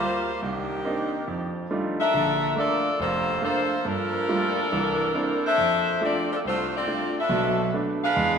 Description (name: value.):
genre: jazz.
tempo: 139 BPM.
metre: 4/4.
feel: swing 67% on 8ths.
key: F major.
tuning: A4 = 440 Hz.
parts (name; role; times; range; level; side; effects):
clear saxophone section; melody; 0.0-8.4 s; Eb3 to F5; -24 LUFS; left 1 dB; none.
clear grand piano; accompaniment; 0.0-8.4 s; F1 to F4; -27 LUFS; right 2 dB; none.
room: wet concert hall reverb, RT60 1.8 s.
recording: recorded in a church or concert hall.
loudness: -22 LUFS.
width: side -6 dB against mid.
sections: 0.0-8.4 A section.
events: none.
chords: 0.4 Cm9; 1.3 F13; 2.1 Bbmaj7; 3.9 Gm9; 4.7 C9; 5.6 F6; 7.3 Bm7.